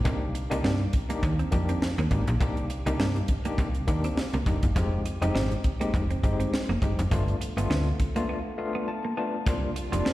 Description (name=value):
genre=early-eighties boogie funk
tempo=102 BPM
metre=4/4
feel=swing 56% on 16ths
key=C minor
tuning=A4 = 440 Hz
part: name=overdriven tine electric piano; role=accompaniment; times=0.0-10.1 s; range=G3 to A5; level=-31 LUFS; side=left 3 dB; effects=fast tremolo, slapback echo
part: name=slap-like FM bass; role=bass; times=0.0-10.0 s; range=F1 to G2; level=-26 LUFS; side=equal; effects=none
part: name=clean electric guitar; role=riff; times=0.1-10.1 s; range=G3 to F4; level=-35 LUFS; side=right 4 dB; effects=lush chorus, slapback echo
part: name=tight funk drum kit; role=drums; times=0.1-10.1 s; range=hi-hat, kick drum, snare drum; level=-28 LUFS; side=equal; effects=none
part: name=soft string machine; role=sustained chords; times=9.5-10.1 s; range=C3 to F4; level=-35 LUFS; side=right 2 dB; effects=ensemble chorus
room=light reverb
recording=live gig heard through the venue's PA, recital hall reverb, faint mains hum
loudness=-24 LUFS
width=side -16 dB against mid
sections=0.0-9.5 A section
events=break 8.3-9.5; tine electric piano fill 8.3-9.5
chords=0.1 Cm9; 4.8 Fm9; 7.1 G9; 9.5 C9sus4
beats=| 0.06 0.64 1.23 1.82 | 2.41 3.00 3.58 4.17 | 4.76 5.35 5.94 6.53 | 7.11 7.70 8.29 8.88 | 9.47 10.05